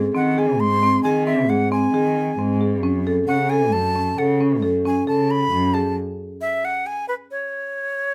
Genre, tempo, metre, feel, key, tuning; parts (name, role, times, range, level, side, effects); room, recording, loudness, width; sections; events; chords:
contemporary instrumental, contemporary; 134 BPM; 7/4; straight; A4 = 440 Hz
marimba with medium hard mallets; arpeggios; 0.0-5.9 s; B#3 to A4; -23 LUFS; equal
dark cello; bass; 0.0-5.9 s; F#2 to D#3; -26 LUFS; equal
breathy bright jazz flute; melody; 0.2-8.1 s; B4 to B#5; -25 LUFS; equal
light reverb; -20 LUFS; mono
0.0-8.1 A section
stop 6.0-8.1
0.0 G#; 2.8 F#m; 6.0 N.C.